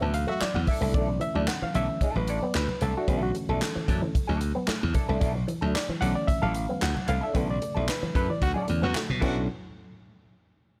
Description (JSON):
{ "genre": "funk", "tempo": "112 BPM", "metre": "4/4", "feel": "straight", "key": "B minor", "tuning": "A4 = 440 Hz", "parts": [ { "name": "semi-hollow electric guitar", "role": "accompaniment", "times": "0.0-9.4 s", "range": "D4 to A4", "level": "-37 LUFS", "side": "equal", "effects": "wah, lush chorus" }, { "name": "electric guitar with an envelope filter", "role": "riff", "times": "0.0-9.4 s", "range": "E3 to B3", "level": "-37 LUFS", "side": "equal", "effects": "none" }, { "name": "barky reed electric piano", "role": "stabs", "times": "0.0-9.5 s", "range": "C#3 to F#5", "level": "-33 LUFS", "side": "equal", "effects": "overdrive" }, { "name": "glassy slap bass", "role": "bass", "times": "0.0-9.5 s", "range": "A1 to B2", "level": "-31 LUFS", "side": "equal", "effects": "none" }, { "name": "swinging big-band drum kit", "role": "drums", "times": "0.1-9.4 s", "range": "crash cymbal, handclaps, hi-hat, kick drum, snare drum", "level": "-33 LUFS", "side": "equal", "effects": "none" }, { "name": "brilliant trombone", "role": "second line", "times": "0.3-0.5, 8.4-9.4 s", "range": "F#4", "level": "-38 LUFS", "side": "equal", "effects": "none" }, { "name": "congas", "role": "percussion", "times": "0.3-9.5 s", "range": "none", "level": "-40 LUFS", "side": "equal", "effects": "none" } ], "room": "studio reverb", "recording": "none", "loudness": "-27 LUFS", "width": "mono", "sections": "0.0-9.5 A section; 9.5-10.8 B section", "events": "band accent 0.0-0.9, 7.4-9.5; reed electric piano solo 0.0-9.5", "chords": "0.0 Bm11; 9.5 N.C.", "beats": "0.42 | 0.95 1.48 2.02 2.55 | 3.08 3.62 4.15 4.68 | 5.22 5.75 6.29 6.82 | 7.36 7.89 8.42 8.96" }